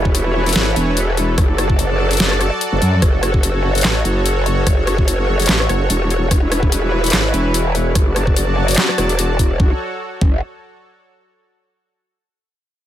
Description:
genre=heavy wobble dubstep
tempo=146 BPM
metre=4/4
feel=swing 55% on 16ths, half-time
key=F# minor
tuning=A4 = 439 Hz
part: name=supersaw pad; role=sustained chords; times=0.0-9.8 s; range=E3 to A5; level=-21 LUFS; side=equal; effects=sidechain pumping
part: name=growl bass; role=bass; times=0.0-10.4 s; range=E1 to F#2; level=-17 LUFS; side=equal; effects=chorus, overdrive
part: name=dubstep drum kit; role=drums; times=0.1-9.5 s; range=handclaps, hi-hat, rim click, snare drum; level=-19 LUFS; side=left 1 dB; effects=overdrive
part: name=electronic kick drum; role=drums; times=0.1-10.3 s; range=none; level=-15 LUFS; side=equal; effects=overdrive
room=little or no reverb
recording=none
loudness=-14 LUFS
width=side -11 dB against mid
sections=0.0-9.6 A section; 9.6-11.2 B section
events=none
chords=0.0 Aadd9/E; 1.4 D/F#; 3.0 F#m; 6.3 Aadd9/E; 8.0 D/F#; 9.6 F#m

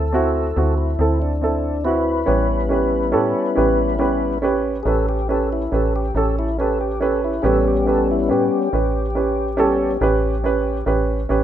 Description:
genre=blues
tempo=47 BPM (dotted quarters)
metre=12/8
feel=straight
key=A mixolydian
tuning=A4 = 440 Hz
part: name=warm upright piano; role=accompaniment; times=0.0-11.4 s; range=C4 to B4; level=-20 LUFS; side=right 3 dB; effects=none
part: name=mellow tonewheel organ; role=sustained chords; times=0.0-10.8 s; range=G3 to B4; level=-22 LUFS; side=left 4 dB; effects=chorus vibrato, slow rotary speaker
part: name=metallic FM bass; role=bass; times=0.0-11.4 s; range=A1 to A2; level=-23 LUFS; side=equal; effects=none
room=light reverb, small room reverb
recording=rough home demo mix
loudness=-17 LUFS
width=side -10 dB against mid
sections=0.0-11.4 A section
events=tonewheel organ solo 0.0-11.4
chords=0.0 D9; 2.3 A9

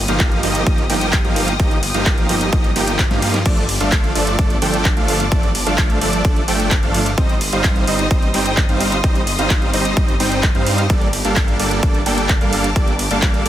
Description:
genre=EDM, festival progressive house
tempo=129 BPM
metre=4/4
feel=straight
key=G minor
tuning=A4 = 440 Hz
part: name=dark studio string section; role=sustained chords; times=0.0-13.5 s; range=Bb3 to Eb6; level=-27 LUFS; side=left 2 dB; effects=sidechain pumping
part: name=wide detuned saw bass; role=bass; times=0.0-13.5 s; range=G1 to G2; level=-23 LUFS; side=equal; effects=chorus, sidechain pumping
part: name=supersaw chords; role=riff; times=0.1-13.5 s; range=F3 to G5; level=-19 LUFS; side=right 1 dB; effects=sidechain pumping, dub echo
part: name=pop drum kit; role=drums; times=0.1-13.5 s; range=crash cymbal, handclaps, hi-hat, ride cymbal, snare drum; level=-23 LUFS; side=equal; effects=overdrive
part: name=electronic kick drum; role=drums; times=0.2-13.3 s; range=none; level=-17 LUFS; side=equal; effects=overdrive
room=little or no reverb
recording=dense, heavily limited modern master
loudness=-14 LUFS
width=side -12 dB against mid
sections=0.0-13.5 A section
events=drum fill 3.0-3.5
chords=0.0 Ebadd9/G; 3.5 Dm/G; 7.2 Cm/G; 10.9 Gmadd9

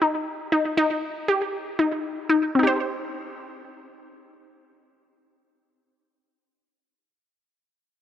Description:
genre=progressive instrumental, progressive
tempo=free time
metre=none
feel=none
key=C minor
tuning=A4 = 440 Hz
part: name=resonant blip pluck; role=solo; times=0.0-7.0 s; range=C4 to C5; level=-22 LUFS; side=left 1 dB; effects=chorus, phaser, slapback echo
room=moderate plate reverb, RT60 3.5 s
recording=none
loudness=-22 LUFS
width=side -10 dB against mid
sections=0.0-2.5 A section; 2.5-6.1 B section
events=none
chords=0.0 Eb; 2.5 Cm

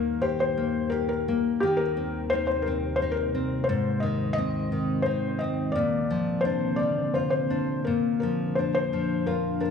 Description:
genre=children's music, lullaby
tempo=87 BPM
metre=3/4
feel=rubato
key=unclear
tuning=A4 = 441 Hz
part: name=felt-muted upright piano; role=melody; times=0.0-9.7 s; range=G4 to Eb5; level=-27 LUFS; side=left 3 dB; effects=tape echo
part: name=nylon-string guitar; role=accompaniment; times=0.0-9.7 s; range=Ab2 to G4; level=-28 LUFS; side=left 2 dB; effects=none
part: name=deep dark ambient pad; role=sustained chords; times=0.0-9.7 s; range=Eb2 to D4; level=-30 LUFS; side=left 1 dB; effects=chorus, built-in reverb
room=moderate plate reverb, RT60 2.7 s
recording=studio reverb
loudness=-24 LUFS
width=side -6 dB against mid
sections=0.0-9.7 A section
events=none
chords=0.0 Eb; 1.6 Cm/Eb; 3.7 Ab; 5.7 Bbadd9; 7.9 Bb

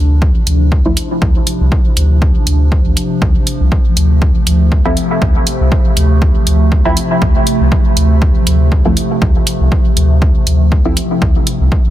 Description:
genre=dub techno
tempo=120 BPM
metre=4/4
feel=swing 55% on 16ths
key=D minor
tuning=A4 = 440 Hz
part: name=warbly tape-like pad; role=sustained chords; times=0.0-11.9 s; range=C3 to D4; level=-18 LUFS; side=equal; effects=chorus, built-in reverb, phaser, sidechain pumping
part: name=warm sub bass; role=bass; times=0.0-11.7 s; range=C2 to D2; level=-12 LUFS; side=equal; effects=sidechain pumping
part: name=electronic kick drum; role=drums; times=0.2-11.8 s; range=none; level=-13 LUFS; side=equal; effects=overdrive
part: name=electronic hi-hat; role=drums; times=0.5-11.6 s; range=none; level=-18 LUFS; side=equal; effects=overdrive
part: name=filtered dub chord stab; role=stabs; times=0.9-1.0, 4.9-11.0 s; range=F3 to E4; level=-20 LUFS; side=right 1 dB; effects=chorus, phaser, sidechain pumping, dub echo
room=little or no reverb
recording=dense, heavily limited modern master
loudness=-10 LUFS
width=side -13 dB against mid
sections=0.0-11.9 A section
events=filter sweep on synth stab 0.0-11.9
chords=0.0 Dm7

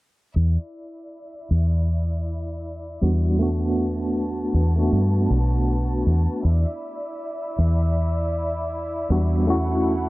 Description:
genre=trip hop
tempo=79 BPM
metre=4/4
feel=swing 59% on 16ths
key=unclear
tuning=A4 = 440 Hz
part: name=clear studio violin section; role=sustained chords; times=0.4-10.1 s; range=E4 to A5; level=-32 LUFS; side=equal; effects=none
part: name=deep dub fingered electric bass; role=bass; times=0.4-10.1 s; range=B1 to G2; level=-21 LUFS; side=equal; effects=none
part: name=tine electric piano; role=accompaniment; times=3.0-10.1 s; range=G3 to F#4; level=-23 LUFS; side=right 1 dB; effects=medium stereo tremolo, low-pass filter, tape echo
room=studio reverb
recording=dry, gritty hardware recording, low-pass filter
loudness=-20 LUFS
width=side -20 dB against mid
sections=0.4-10.1 A section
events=filter sweep 0.4-10.1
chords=0.4 E7(no3); 3.4 Gmaj9/E (rootless); 6.4 E7(no3); 9.5 F#m7/E

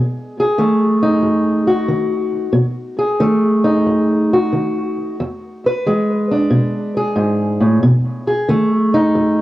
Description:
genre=blues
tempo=91 BPM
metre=4/4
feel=swing 68% on 8ths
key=unclear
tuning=A4 = 442 Hz
part: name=fingerpicked steel-string acoustic guitar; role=solo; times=0.0-9.4 s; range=E2 to B4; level=-14 LUFS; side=equal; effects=analog delay
room=wet studio reverb, RT60 0.6 s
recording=home recording on cassette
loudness=-14 LUFS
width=side -16 dB against mid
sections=0.0-9.4 A section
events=none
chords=0.0 B7; 5.2 E7; 7.8 B7

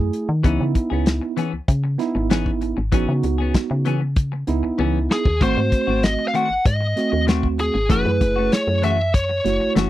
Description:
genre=straight-eighth soul blues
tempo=97 BPM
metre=4/4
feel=straight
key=C# minor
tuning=A4 = 440 Hz
part: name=tine electric piano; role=accompaniment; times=0.0-9.9 s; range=A3 to G#4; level=-23 LUFS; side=right 5 dB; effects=medium stereo tremolo
part: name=woody FM bass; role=bass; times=0.0-9.9 s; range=F#1 to D#3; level=-22 LUFS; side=left 1 dB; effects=none
part: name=warm soul drum kit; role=drums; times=0.1-9.9 s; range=hi-hat, kick drum, snare drum, toms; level=-19 LUFS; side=left 1 dB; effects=none
part: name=clean electric guitar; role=stabs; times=0.4-9.9 s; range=D#3 to G#4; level=-26 LUFS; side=left 7 dB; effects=vibrato effect
part: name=biting lead guitar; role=melody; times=5.1-9.7 s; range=G#4 to F#5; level=-21 LUFS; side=equal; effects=overdrive
room=little or no reverb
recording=dry, close 1970s-style studio recording, faint mains hum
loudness=-18 LUFS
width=side -14 dB against mid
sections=0.0-9.9 A section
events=drum fill 4.8-5.4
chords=0.4 C#m7; 5.4 G#7b9; 7.9 F#m7

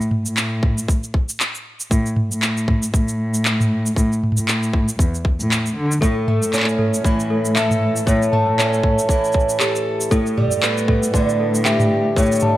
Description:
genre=folktronica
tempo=117 BPM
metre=4/4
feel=swing 56% on 16ths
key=A mixolydian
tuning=A4 = 443 Hz
part: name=minimal click drum kit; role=drums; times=0.0-12.5 s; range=cabasa, handclaps, toms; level=-22 LUFS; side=equal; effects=overdrive
part: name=dark cello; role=bass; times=0.3-12.3 s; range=E2 to D3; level=-21 LUFS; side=equal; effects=none
part: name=electronic kick drum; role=drums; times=0.6-12.3 s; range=none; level=-19 LUFS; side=equal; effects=overdrive
part: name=large celesta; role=second line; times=6.0-12.6 s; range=G4 to A5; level=-22 LUFS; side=left 2 dB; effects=tape echo
part: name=fingerpicked twelve-string acoustic guitar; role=arpeggios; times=6.0-12.6 s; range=A2 to A4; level=-21 LUFS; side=right 2 dB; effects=tape echo
room=studio reverb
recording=none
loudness=-16 LUFS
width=side -15 dB against mid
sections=0.0-12.6 A section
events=none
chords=0.0 N.C.; 6.0 A; 10.1 G/A

